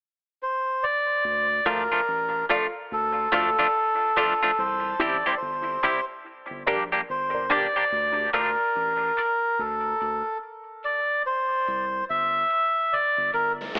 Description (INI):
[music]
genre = dub reggae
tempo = 72 BPM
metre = 4/4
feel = swing 61% on 16ths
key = D minor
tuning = A4 = 441 Hz
[part]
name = melodica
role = melody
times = 0.4-13.5 s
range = A4 to E5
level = -26 LUFS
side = equal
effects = tape echo
[part]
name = soft dub sub bass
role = bass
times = 1.2-13.8 s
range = G1 to D2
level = -42 LUFS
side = equal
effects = none
[part]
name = clean electric guitar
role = accompaniment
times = 1.7-8.5 s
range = F3 to G4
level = -29 LUFS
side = equal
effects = high-pass filter, tape echo
[part]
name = filtered dub chord stab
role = stabs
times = 1.7-13.6 s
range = D4 to F5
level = -36 LUFS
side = equal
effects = phaser, high-pass filter, tape echo
[part]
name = snare drum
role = drums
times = 13.8 s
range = none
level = -26 LUFS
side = equal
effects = none
[sound]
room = moderate plate reverb, RT60 2.4 s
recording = telephone sound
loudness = -25 LUFS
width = mono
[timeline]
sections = 0.0-1.2 A section; 1.2-13.8 B section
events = none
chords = 0.0 N.C.; 1.2 Dm; 4.6 C; 6.2 Gm; 7.9 Dm; 11.2 C; 12.9 Gm